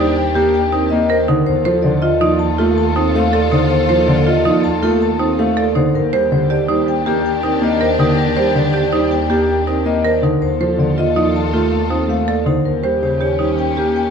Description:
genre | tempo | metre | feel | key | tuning
classical, minimalist pattern music | 161 BPM | 6/4 | straight | Eb lydian | A4 = 444 Hz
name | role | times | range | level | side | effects
vibraphone with medium mallets | melody | 0.0-14.1 s | G4 to A5 | -19 LUFS | left 9 dB | none
dark concert grand piano | accompaniment | 0.0-14.0 s | Db3 to C4 | -19 LUFS | equal | none
rich symphonic violin section | sustained chords | 0.0-14.1 s | Db4 to A4 | -24 LUFS | left 4 dB | none
marimba with medium hard mallets | arpeggios | 0.0-14.0 s | Eb4 to C5 | -19 LUFS | right 8 dB | none
clear symphonic double bass section | bass | 0.0-14.1 s | Eb2 | -21 LUFS | right 3 dB | none
room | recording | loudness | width
light reverb | dark, warm production | -13 LUFS | side -6 dB against mid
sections
0.0-14.1 A section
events
none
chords
0.0 Ebmaj7; 1.5 F7/Eb; 5.9 Ebmaj7; 10.4 F7/Eb; 12.7 Eb7

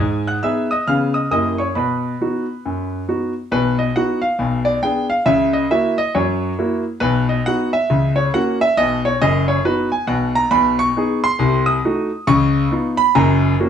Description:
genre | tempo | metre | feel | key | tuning
jazz, stride piano | 137 BPM | 4/4 | swing 62% on 8ths | B major, F# major from 10.5 s | A4 = 440 Hz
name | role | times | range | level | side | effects
clear grand piano | solo | 0.0-13.7 s | F#1 to G#6 | -15 LUFS | equal | none
room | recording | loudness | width
wet studio reverb, RT60 0.6 s | band playing live in one room | -15 LUFS | side -8 dB against mid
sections
0.0-3.5 A section; 3.5-13.7 B section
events
none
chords
0.0 G#m; 0.9 C#7; 1.3 F#7b9; 1.8 B; 4.4 Bdim7; 5.3 F#7/C#; 7.0 B; 7.9 F#/C#; 8.8 B; 10.5 G#m/B; 11.4 Cdim7; 12.3 C#9; 13.2 F#

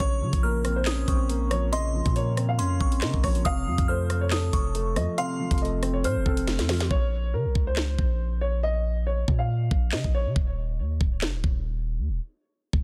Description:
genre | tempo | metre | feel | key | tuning
hip hop, drill | 139 BPM | 4/4 | half-time | Bb harmonic minor | A4 = 440 Hz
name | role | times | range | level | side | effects
dark grand piano | melody | 0.0-10.3 s | A4 to F5 | -35 LUFS | equal | low-pass filter, tape echo
glassy synth bell | second line | 0.0-6.9 s | C6 to F6 | -37 LUFS | equal | chorus, tape echo
dark concert grand piano | accompaniment | 0.0-6.9 s | C3 to C5 | -33 LUFS | equal | low-pass filter
long sustained 808-style bass | bass | 0.0-12.8 s | Db1 to Db3 | -29 LUFS | equal | none
drill drum kit | drums | 0.0-12.8 s | handclaps, hi-hat, kick drum, rim click, snare drum | -28 LUFS | equal | none
room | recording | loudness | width
little or no reverb | dense, heavily limited modern master | -26 LUFS | mono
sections
0.0-6.9 A section; 6.9-12.8 B section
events
drum fill 6.5-6.9; hi-hats muted 6.9-12.8; break 10.4-12.8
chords
0.0 Bbmadd9; 3.5 F; 6.9 Bbmadd9; 10.4 Eb7(no3)

